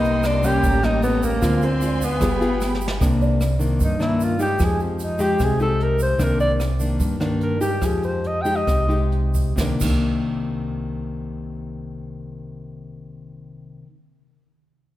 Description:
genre	bossa nova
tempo	128-151 BPM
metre	4/4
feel	straight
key	C minor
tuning	A4 = 440 Hz
part	mellow alto saxophone	melody	0.0-9.0 s	Bb3 to G5	-23 LUFS	equal	none
part	nylon-string guitar	accompaniment	0.0-13.9 s	G2 to Ab4	-23 LUFS	left 2 dB	none
part	dark studio violin section	sustained chords	0.0-3.0 s	A4 to C6	-32 LUFS	right 1 dB	none
part	upright bass	bass	0.0-13.8 s	G1 to G2	-25 LUFS	right 1 dB	none
part	jazz brush drum kit	drums	0.0-9.9 s	crash cymbal, hi-hat, kick drum, rim click, snare drum	-27 LUFS	right 1 dB	none
part	egg shaker	percussion	0.0-9.9 s	none	-39 LUFS	right 5 dB	none
part	warm grand piano	accompaniment	3.2-4.6 s	D5	-32 LUFS	right 4 dB	none
room	moderate concert hall reverb, RT60 2.2 s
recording	recorded in a church or concert hall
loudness	-18 LUFS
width	side -14 dB against mid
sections	0.0-3.0 A section; 3.0-9.6 B section; 9.6-13.3 C section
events	drum fill 2.6-3.0; alto saxophone solo 3.0-9.6; slowing down 6.2-9.6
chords	0.0 Cm7; 0.6 A7b9; 1.4 Dm7b5; 2.2 G7b9; 3.0 Cm9; 4.6 Fm9; 6.2 Cm9; 7.8 Fm9; 9.6 Cm9

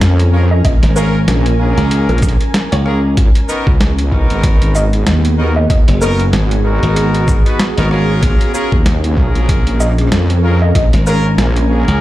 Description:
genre	glitch hop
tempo	95 BPM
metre	4/4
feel	swing 57% on 16ths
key	Bb phrygian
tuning	A4 = 440 Hz
part	wobble bass	bass	0.0-11.8 s	Ab1 to F2	-13 LUFS	equal	chorus
part	boom bap sampler-style drum kit	drums	0.0-12.0 s	hi-hat, rim click, shaker, snare drum	-19 LUFS	equal	overdrive
part	ethereal airy pad	texture	0.0-12.0 s	Cb4 to Ab5	-21 LUFS	right 1 dB	ensemble chorus, built-in reverb, sidechain pumping
part	clear horn section	stabs	0.3-12.0 s	Cb4 to Cb5	-22 LUFS	left 1 dB	sidechain pumping, dub echo
part	woody wave-folded pluck	melody	0.5-11.3 s	Bb4 to Eb5	-22 LUFS	equal	lush chorus, dub echo
part	electronic kick drum	drums	0.6-10.9 s	none	-12 LUFS	equal	overdrive
part	glassy slap bass	bass	0.8-12.0 s	Gb1 to Db2	-13 LUFS	equal	none
room	little or no reverb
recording	played on a big sound system in a bare room, large studio reverb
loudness	-10 LUFS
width	side -15 dB against mid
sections	0.0-12.0 A section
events	none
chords	0.0 Bbm7; 3.2 Abm7; 8.2 Bbm7

